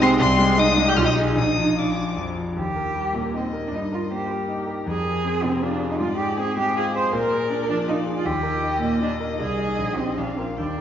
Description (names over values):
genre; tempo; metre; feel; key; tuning
quick classical-period movement for piano trio; 157 BPM; 3/4; rubato; Eb major; A4 = 439 Hz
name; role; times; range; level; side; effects
rich violin; melody; 0.0-10.8 s; Bb4 to G6; -28 LUFS; left 5 dB; none
warm cello; second line; 0.0-10.8 s; Bb3 to C5; -23 LUFS; right 2 dB; none
clear grand piano; accompaniment; 0.0-10.8 s; Bb1 to Bb4; -24 LUFS; left 1 dB; none
room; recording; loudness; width
wet scoring stage reverb, RT60 1.7 s; heard from further back in the room, nothing above 7.5 kHz; -20 LUFS; side -9 dB against mid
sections
0.0-2.6 A section; 2.6-10.8 B section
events
none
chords
0.0 Ab/C; 1.0 Abm/Cb; 1.4 Bb; 2.6 Eb; 3.7 Eb/G; 4.9 Fm; 6.0 Fm/Ab; 7.1 Bb7; 8.3 Eb; 9.4 Ab/C; 9.8 Eb/Bb; 10.2 Bb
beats
| 0.20 0.58 0.97 | 1.37 1.78 2.18 | 2.57 2.96 3.35 | 3.73 4.12 4.50 | 4.88 5.25 5.63 | 6.01 6.39 6.76 | 7.13 7.51 7.89 | 8.26 8.64 9.02 | 9.40 9.79 10.18 | 10.57